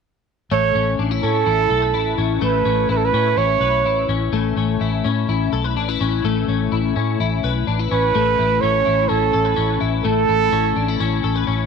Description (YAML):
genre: jangly indie pop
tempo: 126 BPM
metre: 4/4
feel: straight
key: A major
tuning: A4 = 439 Hz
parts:
  - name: warm trumpet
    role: melody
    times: 0.5-4.1, 7.9-11.0 s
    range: A4 to C#5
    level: -19 LUFS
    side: right 8 dB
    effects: none
  - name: twelve-string electric guitar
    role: arpeggios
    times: 0.5-11.7 s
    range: A3 to B4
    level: -21 LUFS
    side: left 11 dB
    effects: ensemble chorus, tape echo
  - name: vintage muted fingered electric bass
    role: bass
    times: 0.5-11.7 s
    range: A1 to A2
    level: -22 LUFS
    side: equal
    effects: none
room: moderate echo chamber reverb, RT60 2.3 s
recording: 1960s-style stereo with parts hard left and right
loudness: -16 LUFS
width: side -6 dB against mid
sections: 0.5-8.1 A section; 8.1-11.7 B section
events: none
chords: 0.5 Aadd9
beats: | 0.51 0.99 1.47 1.95 | 2.42 2.90 3.38 3.85 | 4.33 4.81 5.28 5.76 | 6.24 6.71 7.19 7.67 | 8.14 8.62 9.10 9.57 | 10.05 10.52 11.00 11.48